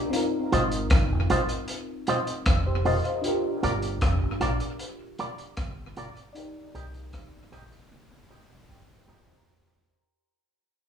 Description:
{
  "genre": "lovers rock reggae",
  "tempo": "77 BPM",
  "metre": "4/4",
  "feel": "straight",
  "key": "unclear",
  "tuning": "A4 = 440 Hz",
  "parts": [
    { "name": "mellow FM electric piano", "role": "accompaniment", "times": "0.0-9.7 s", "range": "C4 to Bb5", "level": "-30 LUFS", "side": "left 1 dB", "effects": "chorus, phaser, tape echo" },
    { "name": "crunchy breakbeat drum kit", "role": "drums", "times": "0.1-9.5 s", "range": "hi-hat, kick drum, rim click, toms", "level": "-27 LUFS", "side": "equal", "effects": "tape echo" },
    { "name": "electric guitar with an envelope filter", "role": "stabs", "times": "0.5-9.2 s", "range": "F4 to Eb5", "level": "-28 LUFS", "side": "right 2 dB", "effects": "none" },
    { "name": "deep dub fingered electric bass", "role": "bass", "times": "0.5-9.2 s", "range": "F1 to C2", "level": "-29 LUFS", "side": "equal", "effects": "none" }
  ],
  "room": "wet large studio reverb, RT60 0.8 s",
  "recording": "band playing live in one room, small room ambience",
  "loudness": "-24 LUFS",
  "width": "side -8 dB against mid",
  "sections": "0.0-9.5 A section",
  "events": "fade-out 0.0-9.5; drum fill 7.9-9.5; FM electric piano fill 7.9-9.5",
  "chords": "0.1 Ab6; 3.2 Gm7; 6.4 Cm7"
}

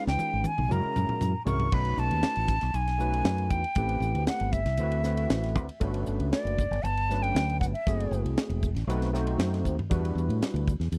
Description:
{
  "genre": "electric jazz fusion",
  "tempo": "117 BPM",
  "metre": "4/4",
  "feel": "straight",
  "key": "unclear",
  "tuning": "A4 = 440 Hz",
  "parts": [
    { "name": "breathy silver concert flute", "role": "melody", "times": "0.0-8.2 s", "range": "D5 to Db6", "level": "-33 LUFS", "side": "equal", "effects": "tape echo" },
    { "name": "overdriven tine electric piano", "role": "accompaniment", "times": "0.0-10.7 s", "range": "F#3 to C5", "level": "-36 LUFS", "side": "equal", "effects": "analog chorus" },
    { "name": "fingered electric bass", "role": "bass", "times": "0.1-11.0 s", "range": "E1 to A2", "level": "-31 LUFS", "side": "equal", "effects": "none" },
    { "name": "crisp fusion drum kit", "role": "drums", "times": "0.1-11.0 s", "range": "crash cymbal, hi-hat, kick drum, ride cymbal, snare drum, toms", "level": "-33 LUFS", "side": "equal", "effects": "none" }
  ],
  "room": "little or no reverb",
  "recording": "dry, close 1970s-style studio recording",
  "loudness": "-28 LUFS",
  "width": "mono",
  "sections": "0.0-1.7 A section; 1.7-11.0 B section",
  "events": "drum fill 0.0-1.7, 9.7",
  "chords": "0.0 Db9; 0.7 Gb7; 1.7 B9; 3.8 Am9; 4.8 D13; 5.8 Gmaj9#11; 7.9 F#m7b5; 8.9 B7b9; 9.9 Em9"
}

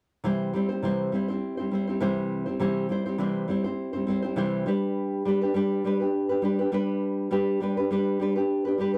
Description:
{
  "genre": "pop",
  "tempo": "102 BPM",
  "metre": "4/4",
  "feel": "swing 55% on 16ths",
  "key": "C major",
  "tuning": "A4 = 440 Hz",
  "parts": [
    { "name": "nylon-string guitar", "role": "accompaniment", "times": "0.2-9.0 s", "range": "C3 to C5", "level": "-27 LUFS", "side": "equal", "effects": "none" }
  ],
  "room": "moderate studio ambience, RT60 0.5 s",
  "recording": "dark, warm production",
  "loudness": "-27 LUFS",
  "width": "mono",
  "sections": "0.2-9.0 A section",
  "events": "none",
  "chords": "0.2 C; 4.7 G"
}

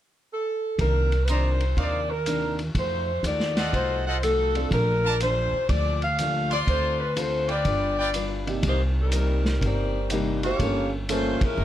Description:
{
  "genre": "jazz, big band swing",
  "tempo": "122 BPM",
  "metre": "4/4",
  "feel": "swing 66% on 8ths",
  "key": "C dorian, C minor from 8.6 s",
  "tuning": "A4 = 440 Hz",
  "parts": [
    { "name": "mellow saxophone section", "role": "melody", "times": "0.3-11.6 s", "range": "G3 to F5", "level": "-26 LUFS", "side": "equal", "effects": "none" },
    { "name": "picked steel-string acoustic guitar", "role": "accompaniment", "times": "0.8-11.6 s", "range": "G2 to B4", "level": "-32 LUFS", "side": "left 4 dB", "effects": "none" },
    { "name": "upright bass", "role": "bass", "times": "0.8-11.6 s", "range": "F#1 to F2", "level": "-26 LUFS", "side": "equal", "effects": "none" },
    { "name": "vintage drum kit", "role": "drums", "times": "0.8-11.5 s", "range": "hi-hat, kick drum, ride cymbal, snare drum", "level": "-31 LUFS", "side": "equal", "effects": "none" },
    { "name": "brilliant trumpet section", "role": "stabs", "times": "1.3-8.1 s", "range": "Eb4 to C6", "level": "-30 LUFS", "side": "equal", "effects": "none" },
    { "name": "warm upright piano", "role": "accompaniment", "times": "4.6-4.7, 8.5-11.4 s", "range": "C3 to A4", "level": "-30 LUFS", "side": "right 4 dB", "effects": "none" }
  ],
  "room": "light reverb",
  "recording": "close, detailed microphones",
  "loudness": "-22 LUFS",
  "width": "side -12 dB against mid",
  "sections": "0.8-8.6 A section; 8.6-11.6 B section",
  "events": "band accent 11.3",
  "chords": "0.0 N.C.; 0.8 Cm9; 2.7 F7b9; 4.7 Bbmaj7; 6.7 Dm7; 7.7 G7; 8.6 Cm7; 10.6 Gm7b5"
}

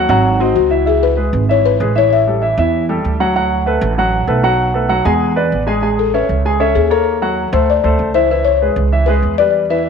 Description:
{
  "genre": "Afro-Cuban jazz",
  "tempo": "194 BPM",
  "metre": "4/4",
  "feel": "straight",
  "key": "A major",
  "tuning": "A4 = 441 Hz",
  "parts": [
    { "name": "warm baby grand piano", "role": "accompaniment", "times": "0.0-9.9 s", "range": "E3 to G#5", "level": "-16 LUFS", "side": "right 1 dB", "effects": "none" },
    { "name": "upright bass", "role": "bass", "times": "0.0-9.9 s", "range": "G#1 to E2", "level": "-18 LUFS", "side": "right 2 dB", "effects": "none" },
    { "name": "buzzing marimba with soft mallets", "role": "melody", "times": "0.4-2.7, 6.0-9.9 s", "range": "F#4 to E5", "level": "-15 LUFS", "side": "left 12 dB", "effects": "slapback echo" }
  ],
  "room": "wet spring reverb, RT60 2.6 s",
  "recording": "none",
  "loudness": "-12 LUFS",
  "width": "side -6 dB against mid",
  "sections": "0.0-5.8 A section; 5.8-9.9 B section",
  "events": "marimba solo 5.8-9.9",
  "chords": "0.2 G#7b13; 0.9 C#m7; 2.1 A5; 3.4 D6; 4.6 B5; 5.2 E7; 5.8 Amaj7; 7.1 D#m7; 7.7 D5; 8.3 C#m7"
}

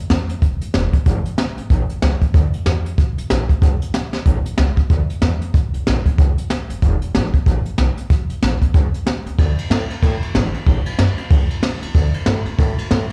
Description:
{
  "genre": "rockabilly",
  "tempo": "187 BPM",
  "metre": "4/4",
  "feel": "swing 60% on 8ths",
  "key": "A major",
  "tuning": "A4 = 444 Hz",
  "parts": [
    { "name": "upright bass", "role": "bass", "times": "0.1-13.1 s", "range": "E1 to A2", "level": "-22 LUFS", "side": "equal", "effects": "none" },
    { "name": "jazz brush drum kit", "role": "drums", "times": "0.1-13.1 s", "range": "hi-hat, kick drum, ride cymbal, snare drum", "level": "-20 LUFS", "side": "equal", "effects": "none" }
  ],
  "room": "little or no reverb",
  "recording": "live gig heard through the venue's PA, club reverb",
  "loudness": "-18 LUFS",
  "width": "mono",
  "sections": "0.0-9.4 A section; 9.4-13.1 B section",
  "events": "drum fill 4.1",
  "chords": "none"
}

